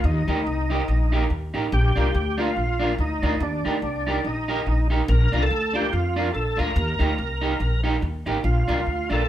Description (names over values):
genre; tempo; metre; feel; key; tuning
ska; 143 BPM; 4/4; swing 58% on 8ths; unclear; A4 = 440 Hz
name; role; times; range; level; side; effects
overdriven tonewheel organ; melody; 0.0-9.3 s; D4 to Bb4; -26 LUFS; equal; chorus vibrato, slow rotary speaker
upright bass; bass; 0.0-9.3 s; A1 to F2; -23 LUFS; equal; none
electric guitar at the edge of break-up; accompaniment; 0.3-9.2 s; D4 to Bb4; -27 LUFS; right 2 dB; dub echo
room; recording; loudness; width
moderate studio reverb, RT60 0.8 s; band playing live in one room; -20 LUFS; side -12 dB against mid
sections
0.0-9.3 A section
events
none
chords
0.0 Eb; 1.7 Bb; 3.4 Eb; 5.1 Bb; 6.8 Eb; 8.4 Bb